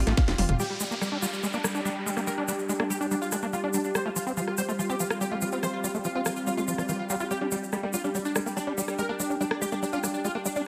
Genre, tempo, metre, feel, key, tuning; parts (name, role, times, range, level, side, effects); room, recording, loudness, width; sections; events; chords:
psychedelic trance; 143 BPM; 4/4; straight; A4 = 440 Hz
supersaw stab; melody; 0.0-10.6 s; G3 to F5; -35 LUFS; equal; phaser, vintage 12-bit sampler grit, sidechain pumping, delay
swarming drone; sustained chords; 0.0-10.7 s; G3 to G4; -38 LUFS; equal; built-in reverb, sidechain pumping
plucky analog bass; bass; 0.0-0.5 s; F1 to A1; -28 LUFS; equal
warbly tape-like pad; texture; 0.0-10.7 s; C4 to G5; -39 LUFS; equal; chorus, built-in reverb, sidechain pumping
overdriven acid bass; riff; 0.1-10.6 s; E3 to F4; -34 LUFS; equal; distortion, sidechain pumping, delay
garage drum kit; drums; 0.1-10.1 s; hi-hat, rim click, snare drum, toms; -34 LUFS; equal; small room ambience
egg shaker; percussion; 0.6-10.6 s; -38 LUFS; equal
downlifter; sound effects; 0.6-4.0 s; -40 LUFS; equal
moderate lush hall reverb, RT60 2.0 s; -29 LUFS; mono
0.6-10.7 A section
drum fill 0.2-0.6; filter sweep on synth drone 0.6-10.7
0.0 F5; 0.6 G5; 4.0 F5; 7.3 G5